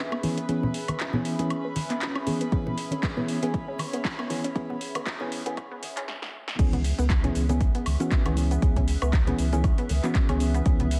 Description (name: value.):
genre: deep house.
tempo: 118 BPM.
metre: 4/4.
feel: swing 56% on 16ths.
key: C# minor.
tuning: A4 = 440 Hz.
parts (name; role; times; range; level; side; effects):
hollow soft pad; sustained chords; 0.0-11.0 s; C#4 to E5; -40 LUFS; equal; chorus, sidechain pumping.
warm chamber violin section; texture; 0.0-6.1 s; B4 to B5; -43 LUFS; equal; none.
analog pluck; arpeggios; 0.1-10.9 s; B3 to C#4; -38 LUFS; equal; chorus, sidechain pumping, analog delay.
deep house drum kit; drums; 0.1-11.0 s; crash cymbal, handclaps, hi-hat, shaker, snare drum, woodblock; -37 LUFS; equal; overdrive.
bongos and congas; percussion; 0.1-10.9 s; none; -36 LUFS; equal; none.
mellow FM electric piano; stabs; 0.2-10.9 s; E3 to G#4; -32 LUFS; equal; chorus, sidechain pumping, analog delay.
electronic kick drum; drums; 2.5-10.8 s; none; -26 LUFS; equal; overdrive.
warm sub bass; bass; 6.6-11.0 s; C#2; -28 LUFS; equal; sidechain pumping.
room: light reverb.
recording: dense, heavily limited modern master, high-pass filter.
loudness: -26 LUFS.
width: mono.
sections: 0.0-6.6 A section; 6.6-11.0 B section.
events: build-up 0.0-6.6; filter sweep on synth arpeggio sound 0.0-6.6; filter sweep 0.0-6.6; drum fill 6.1-6.6; drop 6.6-11.0.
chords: 0.0 C#m7.